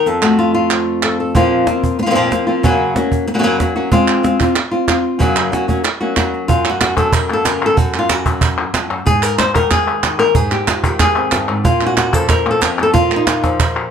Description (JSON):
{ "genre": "flamenco", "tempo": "186 BPM", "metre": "4/4", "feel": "straight", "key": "unclear", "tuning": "A4 = 440 Hz", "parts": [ { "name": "flamenco guitar", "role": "melody", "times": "0.0-13.9 s", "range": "F2 to C5", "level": "-14 LUFS", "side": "left 1 dB", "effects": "plate reverb" }, { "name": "palmas hand claps", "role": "percussion", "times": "0.2-1.2, 4.1-13.9 s", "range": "none", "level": "-19 LUFS", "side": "right 3 dB", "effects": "none" }, { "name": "cajon", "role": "percussion", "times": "1.4-13.8 s", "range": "none", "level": "-18 LUFS", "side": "right 2 dB", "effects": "none" } ], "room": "moderate studio reverb, RT60 0.5 s", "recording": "dark, warm production", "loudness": "-13 LUFS", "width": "side -7 dB against mid", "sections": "0.0-1.4 A section; 1.4-6.5 B section; 6.5-13.9 C section", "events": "nylon-string guitar solo 0.0-1.4", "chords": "0.1 F; 1.4 Fsus4; 2.6 Gb; 3.9 Ab6; 5.2 Gb; 9.1 Ab; 11.6 Bbm" }